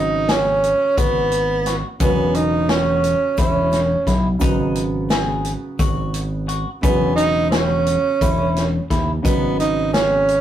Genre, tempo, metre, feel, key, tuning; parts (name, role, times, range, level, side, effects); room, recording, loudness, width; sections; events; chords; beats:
progressive instrumental, band music in an uneven meter; 174 BPM (eighths); 7/8; straight; E major; A4 = 441 Hz
breathy tenor saxophone; melody; 0.0-10.4 s; B3 to D#4; -18 LUFS; right 2 dB
dark concert grand piano; accompaniment; 0.0-10.4 s; C#3 to B3; -26 LUFS; right 2 dB
modern bright fingered electric bass; bass; 0.0-10.4 s; E1 to D#2; -23 LUFS; left 1 dB
semi-hollow electric guitar; arpeggios; 0.3-10.3 s; C#4 to G#4; -27 LUFS; left 4 dB
vintage drum kit; drums; 0.3-10.4 s; hi-hat, kick drum, snare drum; -22 LUFS; equal
tube shaker; percussion; 0.3-10.1 s; -41 LUFS; right 2 dB
moderate studio reverb, RT60 0.6 s; rough rehearsal-room recording, warm saturation; -16 LUFS; side -11 dB against mid
0.0-10.4 A section
0.0 G#m; 2.0 E5; 4.4 G#m; 6.8 E5; 9.2 G#m
0.29 0.63 0.97 1.32 1.66 | 2.01 2.35 2.69 3.04 3.38 3.73 4.07 | 4.41 4.76 5.10 5.45 5.79 6.14 6.48 | 6.83 7.17 7.52 7.86 8.21 8.55 8.90 | 9.25 9.59 9.94 10.29